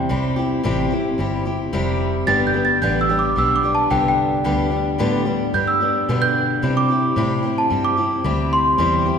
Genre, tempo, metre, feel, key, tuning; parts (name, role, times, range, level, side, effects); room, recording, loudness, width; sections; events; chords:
honky-tonk and classic country; 110 BPM; 4/4; straight; C major; A4 = 440 Hz
celesta; melody; 0.0-9.1 s; G5 to A6; -20 LUFS; right 1 dB
picked steel-string acoustic guitar; accompaniment; 0.0-9.2 s; G2 to G4; -21 LUFS; left 2 dB
vintage muted fingered electric bass; bass; 0.0-9.2 s; F1 to C3; -24 LUFS; right 1 dB
wet concert hall reverb, RT60 1.9 s; recorded in a church or concert hall; -17 LUFS; side -7 dB against mid
0.0-9.2 A section
celesta solo 0.0-9.2
0.0 C; 2.3 G; 6.6 C